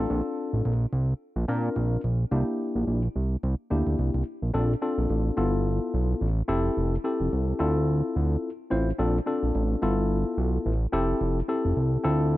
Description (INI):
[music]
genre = early-eighties boogie funk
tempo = 108 BPM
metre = 4/4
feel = swing 56% on 16ths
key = unclear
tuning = A4 = 441 Hz
[part]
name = barky tine electric piano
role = accompaniment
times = 0.0-12.4 s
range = Bb3 to C5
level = -27 LUFS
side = left 2 dB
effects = overdrive
[part]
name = fat analog bass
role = bass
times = 0.0-12.4 s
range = F1 to Bb2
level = -25 LUFS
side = right 1 dB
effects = none
[sound]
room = light reverb, digital ambience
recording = none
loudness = -24 LUFS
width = side -16 dB against mid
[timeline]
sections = 0.0-4.5 A section; 4.5-12.4 B section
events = none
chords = 0.0 Bbmaj7; 2.3 C9; 4.5 Bbmaj7; 5.4 G13; 6.5 Fmaj7; 7.6 Dm7; 9.0 Bbmaj7; 9.8 G13; 10.9 Fmaj7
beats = | 0.10 0.65 1.21 1.76 | 2.32 2.88 3.43 3.99 | 4.54 5.10 5.65 6.21 | 6.76 7.32 7.88 8.43 | 8.99 9.54 10.10 10.65 | 11.21 11.76 12.32